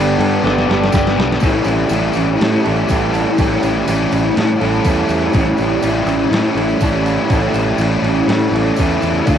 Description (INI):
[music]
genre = rock, shoegaze and dream pop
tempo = 122 BPM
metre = 4/4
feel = straight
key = A mixolydian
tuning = A4 = 440 Hz
[part]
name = picked twelve-string acoustic guitar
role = arpeggios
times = 0.0-9.4 s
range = F3 to A4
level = -23 LUFS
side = right 8 dB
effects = lush chorus, cassette tape, tape echo
[part]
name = electric guitar through a small old amp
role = riff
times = 0.0-9.4 s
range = A2 to A4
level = -20 LUFS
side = right 9 dB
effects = reverse reverb, cassette tape
[part]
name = overdriven electric guitar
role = riff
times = 0.0-9.4 s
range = G2 to G4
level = -17 LUFS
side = left 7 dB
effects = wide subtle chorus, cassette tape
[part]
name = fuzz fingered electric bass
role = bass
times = 0.0-9.4 s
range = G1 to A2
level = -20 LUFS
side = equal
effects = overdrive
[part]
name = clean 12-bit digital drum machine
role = drums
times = 0.2-9.4 s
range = crash cymbal, kick drum, snare drum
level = -21 LUFS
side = equal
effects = cassette tape
[part]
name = tambourine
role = percussion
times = 0.9-9.4 s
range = none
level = -37 LUFS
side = right 7 dB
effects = none
[sound]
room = little or no reverb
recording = home recording on cassette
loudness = -13 LUFS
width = side -9 dB against mid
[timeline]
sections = 0.0-1.4 A section; 1.4-9.4 B section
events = drum fill 0.4-1.4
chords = 0.0 Gadd9; 1.4 A7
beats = 0.44 0.93 | 1.42 1.91 2.40 2.90 | 3.39 3.88 4.37 4.86 | 5.35 5.84 6.33 6.83 | 7.32 7.81 8.30 8.79 | 9.28